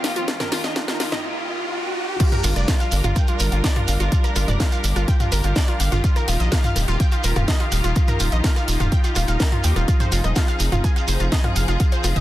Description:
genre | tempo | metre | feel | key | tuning
melodic techno | 125 BPM | 4/4 | straight | G phrygian | A4 = 440 Hz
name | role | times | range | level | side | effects
clear symphonic string section | sustained chords | 0.0-12.2 s | Eb2 to Bb4 | -29 LUFS | left 1 dB | sidechain pumping
house drum kit | drums | 0.0-12.2 s | crash cymbal, hi-hat, rim click, snare drum, toms | -26 LUFS | equal | none
riser | sound effects | 0.0-2.2 s | none | -30 LUFS | right 1 dB | none
wide unison pluck | arpeggios | 0.2-12.2 s | F4 to Ab6 | -27 LUFS | equal | cassette tape, sidechain pumping, dub echo
electronic kick drum | drums | 0.3-11.9 s | none | -19 LUFS | equal | high-pass filter on kick
shekere | percussion | 2.2-12.2 s | none | -32 LUFS | right 5 dB | none
gritty driven synth bass | bass | 2.4-12.2 s | Eb1 to Eb2 | -20 LUFS | equal | sidechain pumping
room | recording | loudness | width
little or no reverb | dense, heavily limited modern master, high-pass filter | -18 LUFS | side -15 dB against mid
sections
0.0-2.2 A section; 2.2-12.2 B section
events
build-up 0.0-2.2; drum fill 0.0-1.2; riser 0.0-2.2; break 1.2-2.2; drop 2.2-12.2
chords
0.0 Ebadd9; 2.2 Gm7; 6.0 Ebadd9; 9.9 Fm7

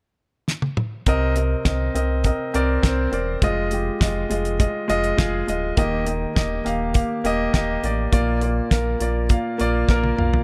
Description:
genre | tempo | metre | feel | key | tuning
piano-driven pop | 102 BPM | 4/4 | straight | C minor | A4 = 440 Hz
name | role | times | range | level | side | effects
damped 70s drum kit | drums | 0.5-10.4 s | hi-hat, kick drum, snare drum, toms | -24 LUFS | equal | none
warm concert grand piano | accompaniment | 1.1-10.4 s | Bb2 to F5 | -24 LUFS | equal | none
sub bass with octave | bass | 1.1-10.4 s | D1 to C2 | -27 LUFS | equal | none
room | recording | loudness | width
light reverb, small room ambience | dark, warm production | -22 LUFS | mono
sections
0.0-1.1 A section; 1.1-10.4 B section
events
drum fill 0.5-1.1, 9.9-10.4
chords
0.0 N.C.; 1.1 Cm7; 3.4 Fm7; 5.8 Eb; 8.1 Bb

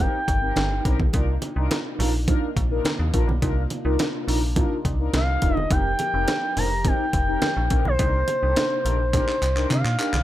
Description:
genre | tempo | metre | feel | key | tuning
early-eighties boogie funk | 105 BPM | 4/4 | straight | C minor | A4 = 444 Hz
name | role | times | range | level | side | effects
expressive portamento lead | melody | 0.0-0.9, 5.2-10.2 s | C5 to Bb5 | -25 LUFS | equal | chorus, plate reverb
mellow synth brass | accompaniment | 0.0-10.1 s | C4 to Bb4 | -29 LUFS | left 2 dB | chorus, phaser, plate reverb
chorused pulse-width pad | sustained chords | 0.0-10.2 s | C3 to Bb4 | -35 LUFS | equal | none
metallic FM bass | bass | 0.0-10.2 s | E1 to C3 | -24 LUFS | equal | none
breakbeat sampler-style drum kit | drums | 0.3-10.2 s | handclaps, hi-hat, kick drum, snare drum | -25 LUFS | equal | gated reverb
congas | percussion | 0.3-10.2 s | none | -31 LUFS | right 4 dB | none
room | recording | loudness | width
little or no reverb | none | -20 LUFS | side -14 dB against mid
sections
0.0-10.2 A section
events
drum fill 9.1-10.2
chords
0.0 F9sus4; 1.1 Cm11; 5.7 F9sus4; 8.0 Cm9

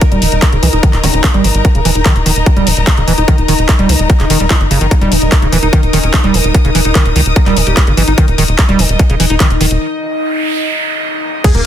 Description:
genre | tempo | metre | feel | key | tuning
psychedelic trance | 147 BPM | 4/4 | straight | unclear | A4 = 440 Hz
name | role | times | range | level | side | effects
evolving wavetable pad | sustained chords | 0.0-11.7 s | Eb4 to Eb5 | -19 LUFS | left 1 dB | chorus, built-in reverb, vintage 12-bit sampler grit, sidechain pumping
liquid acid bass | riff | 0.0-11.5 s | Db3 to Fb4 | -16 LUFS | right 3 dB | chorus, auto-pan, sidechain pumping, tape echo
drum and bass drum kit | drums | 0.0-11.6 s | crash cymbal, handclaps, hi-hat | -17 LUFS | left 1 dB | overdrive, studio reverb
electronic kick drum | drums | 0.0-11.5 s | none | -10 LUFS | equal | overdrive, studio reverb
clear studio string section | texture | 0.0-11.7 s | Eb4 to Eb6 | -21 LUFS | left 4 dB | sidechain pumping
tight sequencer bass | bass | 0.1-11.6 s | Eb1 to Db2 | -14 LUFS | equal | none
resonant blip pluck | second line | 0.6-1.4, 5.9-7.8 s | Db4 to G4 | -28 LUFS | right 1 dB | none
zap, noise sweep and sub drop | sound effects | 1.0-1.1, 10.1-11.7 s | none | -19 LUFS | right 3 dB | none
supersaw stab | melody | 11.4-11.6 s | Bb3 to Ab4 | -15 LUFS | right 1 dB | phaser, sidechain pumping
room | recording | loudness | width
little or no reverb | dense, heavily limited modern master | -9 LUFS | side -10 dB against mid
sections
0.0-11.4 A section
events
filter sweep on acid bass 0.0-11.4; break 9.8-11.4; noise sweep 10.1-11.4; impact 11.4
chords
0.0 Eb5

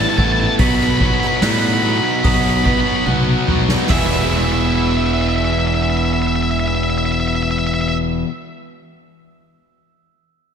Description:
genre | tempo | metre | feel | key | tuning
post-rock | 73 BPM | 4/4 | straight | E major | A4 = 439 Hz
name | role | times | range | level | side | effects
octave-fuzz lead guitar | melody | 0.0-8.0 s | E5 to B5 | -21 LUFS | left 1 dB | distortion, slapback echo
pedal steel guitar | sustained chords | 0.0-8.0 s | G#3 to B5 | -32 LUFS | right 4 dB | none
electric guitar through a small old amp | arpeggios | 0.0-8.3 s | E2 to A4 | -27 LUFS | right 2 dB | slapback echo
glockenspiel with hard plastic mallets | arpeggios | 0.0-4.3 s | D#6 to G#6 | -32 LUFS | right 8 dB | none
crunchy overdriven guitar | riff | 0.0-8.3 s | E2 to B3 | -22 LUFS | left 10 dB | slapback echo
distorted electric guitar | riff | 0.0-8.3 s | B2 to A4 | -23 LUFS | right 11 dB | overdrive, slapback echo
growling fingered electric bass | bass | 0.0-8.2 s | E1 to A2 | -20 LUFS | equal | overdrive
soft-mallet drum kit | drums | 0.2-4.1 s | hi-hat, kick drum, snare drum, toms | -20 LUFS | equal | none
room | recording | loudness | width
moderate lush hall reverb, RT60 2.7 s | big arena sound | -14 LUFS | side -7 dB against mid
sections
0.0-3.9 A section; 3.9-7.2 B section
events
drum fill 3.1-3.9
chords
0.0 Asus2; 0.6 B; 3.9 E

